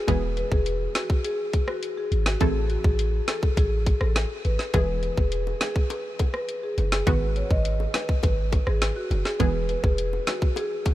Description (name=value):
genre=dancehall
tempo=103 BPM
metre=4/4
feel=straight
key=E major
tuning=A4 = 440 Hz
part: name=marimba with medium mallets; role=melody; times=0.0-10.7 s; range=F#4 to D#5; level=-29 LUFS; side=left 1 dB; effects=ping-pong delay
part: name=punchy chord stab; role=accompaniment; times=0.1-9.9 s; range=D#3 to A4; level=-32 LUFS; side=right 3 dB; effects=chorus
part: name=warm 808-style bass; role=bass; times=0.1-10.2 s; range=E1 to A1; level=-26 LUFS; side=equal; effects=none
part: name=island pop drum kit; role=drums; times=0.1-10.9 s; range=hi-hat, kick drum, rim click, snare drum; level=-26 LUFS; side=equal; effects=none
part: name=bongos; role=percussion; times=4.7-10.9 s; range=none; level=-39 LUFS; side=left 5 dB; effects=none
room=light reverb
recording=none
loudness=-22 LUFS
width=side -15 dB against mid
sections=0.0-10.9 A section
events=none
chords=0.1 E; 2.4 Am; 4.7 E; 7.1 G#m7; 9.4 E